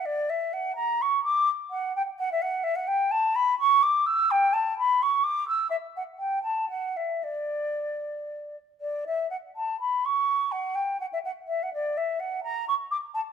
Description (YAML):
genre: classical, baroque-style fantasia for unaccompanied flute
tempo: 74-87 BPM (dotted quarters)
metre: 6/8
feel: rubato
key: D major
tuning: A4 = 443 Hz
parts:
  - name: mellow concert flute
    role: solo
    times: 0.0-13.2 s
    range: D5 to E6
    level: -24 LUFS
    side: equal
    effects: none
room: moderate recital hall reverb, RT60 1.4 s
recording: close, detailed microphones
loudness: -24 LUFS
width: side -7 dB against mid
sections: 0.0-8.8 A section; 8.8-13.3 A section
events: none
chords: none